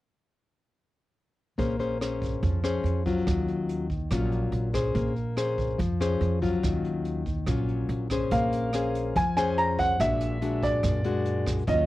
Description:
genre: bossa nova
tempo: 143 BPM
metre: 4/4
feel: straight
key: Bb minor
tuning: A4 = 440 Hz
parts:
  - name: nylon-string guitar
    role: accompaniment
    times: 1.6-11.9 s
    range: Bb2 to C5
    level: -28 LUFS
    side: left 3 dB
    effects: cassette tape
  - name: upright bass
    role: bass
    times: 1.6-11.9 s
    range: Bb1 to F#2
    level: -30 LUFS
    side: right 1 dB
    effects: none
  - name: jazz brush drum kit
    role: drums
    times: 1.6-11.8 s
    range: hi-hat, kick drum, rim click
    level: -33 LUFS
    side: right 2 dB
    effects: cassette tape
  - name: warm concert grand piano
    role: melody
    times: 8.3-11.9 s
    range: D5 to Bb5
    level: -27 LUFS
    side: right 1 dB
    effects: cassette tape
room: light reverb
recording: home recording on cassette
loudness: -24 LUFS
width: side -16 dB against mid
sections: 1.6-8.3 A section; 8.3-11.9 B section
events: none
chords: 1.6 Bbm9; 3.3 Ebm9; 4.9 Bbm9; 6.6 Ebm9; 8.3 Bbm9; 10.0 Bbaug7

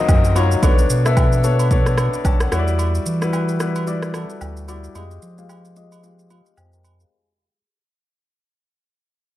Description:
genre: amapiano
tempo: 111 BPM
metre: 4/4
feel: swing 58% on 16ths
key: unclear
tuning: A4 = 442 Hz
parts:
  - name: clear baby grand piano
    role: accompaniment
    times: 0.0-7.3 s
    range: Gb3 to B5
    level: -22 LUFS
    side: left 4 dB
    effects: low-pass filter
  - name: downlifter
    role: sound effects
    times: 0.0-2.8 s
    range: none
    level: -34 LUFS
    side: right 1 dB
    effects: none
  - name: warm sub bass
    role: bass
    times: 0.1-7.1 s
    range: B1 to F3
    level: -20 LUFS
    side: equal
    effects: none
  - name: deep house drum kit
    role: drums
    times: 0.1-7.1 s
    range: kick drum, rim click, shaker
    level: -19 LUFS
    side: equal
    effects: overdrive
  - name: woodblock and agogo bells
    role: percussion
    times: 0.1-7.0 s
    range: none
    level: -32 LUFS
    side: right 6 dB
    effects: none
room: light reverb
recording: dark, warm production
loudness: -15 LUFS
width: side -14 dB against mid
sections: 0.0-7.1 A section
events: fade-out 0.0-7.1; filter sweep on grand piano 0.0-7.1; break 5.0-7.1; grand piano fill 6.0-7.1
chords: 0.0 Ebm9; 0.6 Bm9; 2.5 Em9; 5.0 Fm9

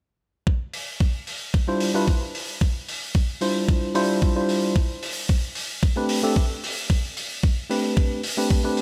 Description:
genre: nu-disco, nu disco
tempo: 112 BPM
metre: 4/4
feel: straight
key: unclear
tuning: A4 = 439 Hz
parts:
  - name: electronic kick drum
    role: drums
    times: 0.5-8.6 s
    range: none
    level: -23 LUFS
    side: equal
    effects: studio reverb
  - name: hi-hat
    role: drums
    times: 0.7-8.8 s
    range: none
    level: -33 LUFS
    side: equal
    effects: studio reverb
  - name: bright tine electric piano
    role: accompaniment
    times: 1.7-8.8 s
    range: G3 to C5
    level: -26 LUFS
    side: equal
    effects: sidechain pumping, digital delay
room: light reverb, small room ambience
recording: bright 1980s-style digital production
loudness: -24 LUFS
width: mono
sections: 0.5-8.8 A section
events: none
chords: 0.5 Dm11; 4.8 Am11

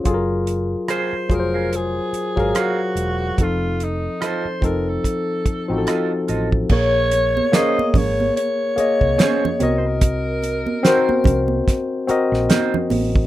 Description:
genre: lush 1970s-style soul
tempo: 72 BPM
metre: 4/4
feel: swing 58% on 16ths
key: Bb minor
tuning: A4 = 441 Hz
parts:
  - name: barky tine electric piano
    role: accompaniment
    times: 0.0-13.3 s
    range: F3 to F5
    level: -21 LUFS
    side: left 2 dB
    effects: none
  - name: hollow-body short-scale fingered electric bass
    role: bass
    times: 0.1-13.3 s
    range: E1 to C2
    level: -24 LUFS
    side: right 1 dB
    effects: none
  - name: damped 70s drum kit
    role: drums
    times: 0.1-13.3 s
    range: crash cymbal, hi-hat, kick drum, rim click, snare drum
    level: -19 LUFS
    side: right 1 dB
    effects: none
  - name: raspy alto saxophone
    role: melody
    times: 0.9-11.5 s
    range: Eb4 to Eb5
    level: -23 LUFS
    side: equal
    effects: none
  - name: electric guitar at the edge of break-up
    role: riff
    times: 0.9-12.8 s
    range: Db4 to F5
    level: -25 LUFS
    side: right 7 dB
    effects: none
  - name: congas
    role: percussion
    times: 6.7-13.1 s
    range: none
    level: -25 LUFS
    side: right 5 dB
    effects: none
room: light reverb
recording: rough home demo mix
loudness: -17 LUFS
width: side -14 dB against mid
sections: 0.0-6.7 A section; 6.7-13.3 B section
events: none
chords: 0.1 Gbmaj9; 3.4 F7; 6.7 Bbm9; 9.6 Cm7b5

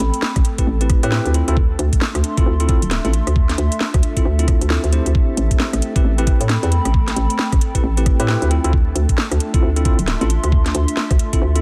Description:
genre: UK garage, two-step garage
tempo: 134 BPM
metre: 4/4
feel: swing 61% on 16ths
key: unclear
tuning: A4 = 441 Hz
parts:
  - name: ethereal airy pad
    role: sustained chords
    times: 0.0-11.6 s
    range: A3 to A4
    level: -34 LUFS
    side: equal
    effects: ensemble chorus, built-in reverb, sidechain pumping
  - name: hollow knocking FM bass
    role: bass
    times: 0.0-11.6 s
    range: D1 to A2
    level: -20 LUFS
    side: equal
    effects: none
  - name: garage drum kit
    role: drums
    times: 0.0-11.6 s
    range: hi-hat, rim click, snare drum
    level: -26 LUFS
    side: equal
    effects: none
  - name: warbly tape-like pad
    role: texture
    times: 0.0-11.6 s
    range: C4 to C6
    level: -30 LUFS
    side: equal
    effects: chorus, built-in reverb, sidechain pumping
  - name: electronic kick drum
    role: drums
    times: 0.4-11.4 s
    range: none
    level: -19 LUFS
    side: equal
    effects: none
  - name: tine electric piano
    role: stabs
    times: 0.6-11.6 s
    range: C4 to C5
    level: -27 LUFS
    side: equal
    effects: medium tremolo, dub echo
room: little or no reverb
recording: dense, heavily limited modern master, vinyl crackle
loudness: -17 LUFS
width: mono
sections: 0.0-11.6 A section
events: none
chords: 0.0 Am9; 1.3 Dm9; 5.2 Am9; 8.5 Dm9

